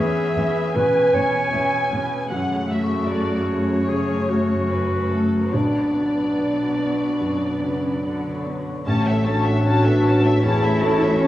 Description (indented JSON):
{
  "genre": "cinematic",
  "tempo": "71-78 BPM",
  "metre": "4/4",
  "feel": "rubato",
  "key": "unclear",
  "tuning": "A4 = 439 Hz",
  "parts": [
    { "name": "muted studio violin section", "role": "second line", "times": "0.0-11.3 s", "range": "A4 to G#5", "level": "-28 LUFS", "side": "equal", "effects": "none" },
    { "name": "warm clarinet", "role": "second line", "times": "0.0-11.3 s", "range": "D4 to C#5", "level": "-23 LUFS", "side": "equal", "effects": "none" },
    { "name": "felt-muted upright piano", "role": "accompaniment", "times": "0.0-11.3 s", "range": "A1 to D5", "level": "-25 LUFS", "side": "left 1 dB", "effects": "none" },
    { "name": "muted studio viola section", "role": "accompaniment", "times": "0.0-11.3 s", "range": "C#3 to C#4", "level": "-29 LUFS", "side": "equal", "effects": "none" },
    { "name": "concert harp", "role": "arpeggios", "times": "0.0-11.3 s", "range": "E2 to C#6", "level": "-30 LUFS", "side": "left 2 dB", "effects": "none" },
    { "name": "muted symphonic cello section", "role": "bass", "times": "0.0-11.3 s", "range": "E2 to E4", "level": "-27 LUFS", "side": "right 1 dB", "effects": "none" },
    { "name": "muted studio violin section", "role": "melody", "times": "8.9-11.3 s", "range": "E5 to A5", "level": "-26 LUFS", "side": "left 4 dB", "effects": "none" },
    { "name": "muted studio double bass section", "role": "bass", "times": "8.9-11.3 s", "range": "A1", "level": "-23 LUFS", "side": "right 1 dB", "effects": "none" },
    { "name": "clear French horn section", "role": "sustained chords", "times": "9.3-11.3 s", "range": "F#4 to A4", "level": "-22 LUFS", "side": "equal", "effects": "none" }
  ],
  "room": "wet concert hall reverb, RT60 1.9 s",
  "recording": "small room ambience",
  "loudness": "-18 LUFS",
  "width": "side -14 dB against mid",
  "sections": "0.0-8.9 A section; 8.9-11.3 A section",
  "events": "none",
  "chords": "0.0 E6; 2.3 F#madd9; 5.5 Bmadd9; 8.9 A"
}